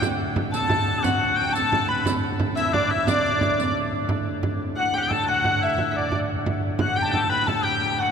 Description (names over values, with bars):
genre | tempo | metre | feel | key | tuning
medieval dance | 118 BPM (dotted quarters) | 6/8 | straight | D major | A4 = 440 Hz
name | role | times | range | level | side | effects
clear shawm | second line | 0.0-8.1 s | D4 to B4 | -28 LUFS | left 5 dB | none
pipe organ, cornet | drone | 0.0-8.1 s | D2 to A2 | -30 LUFS | equal | none
frame drum | percussion | 0.0-8.1 s | none | -27 LUFS | right 2 dB | none
riq | percussion | 0.0-3.7 s | none | -32 LUFS | right 4 dB | none
dark hurdy-gurdy | melody | 0.5-8.1 s | D5 to B5 | -24 LUFS | equal | none
room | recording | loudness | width
wet cathedral reverb, RT60 5.7 s | minimal, uncompressed stereo recording | -20 LUFS | side -6 dB against mid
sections
0.0-4.1 A section; 4.1-8.1 B section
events
none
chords
none